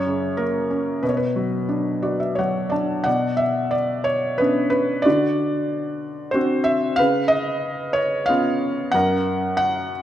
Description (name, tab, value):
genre	classical, lyrical solo piano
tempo	91 BPM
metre	3/4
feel	uneven beats, rubato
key	B minor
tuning	A4 = 443 Hz
part	felt-muted upright piano	solo	0.0-10.0 s	F#2 to A5	-19 LUFS	equal	none
room	moderate scoring stage reverb, RT60 2.0 s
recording	none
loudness	-19 LUFS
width	side -11 dB against mid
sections	0.0-3.1 A section; 3.1-10.0 B section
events	felt piano fill 1.7-3.1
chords	0.0 F#; 1.0 Bm; 3.1 Bmadd9; 5.1 D7; 7.0 C#7; 8.9 F#